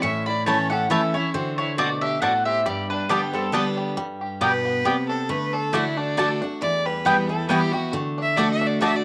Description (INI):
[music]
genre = bluegrass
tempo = 137 BPM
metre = 3/4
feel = swing 55% on 8ths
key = G major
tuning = A4 = 440 Hz
[part]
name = bluegrass banjo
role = melody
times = 0.0-9.0 s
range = G3 to G4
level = -35 LUFS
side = equal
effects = cassette tape
[part]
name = mandolin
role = melody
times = 0.0-3.7 s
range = G4 to C#6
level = -27 LUFS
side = equal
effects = cassette tape
[part]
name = rich fiddle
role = second line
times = 0.0-9.0 s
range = B3 to E5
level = -30 LUFS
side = equal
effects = cassette tape
[part]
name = picked steel-string acoustic guitar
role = accompaniment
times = 0.0-9.0 s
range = E2 to G4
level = -28 LUFS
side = equal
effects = cassette tape
[part]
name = mandolin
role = stabs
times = 0.5-8.9 s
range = A3 to A5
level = -25 LUFS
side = equal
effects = cassette tape
[sound]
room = light reverb, small room ambience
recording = home recording on cassette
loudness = -23 LUFS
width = mono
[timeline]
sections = 0.0-4.0 A section; 4.0-9.0 B section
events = fiddle solo 4.0-9.0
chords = 0.0 A; 1.3 D7; 2.7 Gadd9; 4.0 G; 5.3 D; 6.6 Em; 7.9 D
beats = | 0.03 0.47 0.91 | 1.34 1.78 2.22 | 2.66 3.10 3.54 | 3.98 4.42 4.86 | 5.29 5.73 6.17 | 6.61 7.05 7.49 | 7.93 8.37 8.81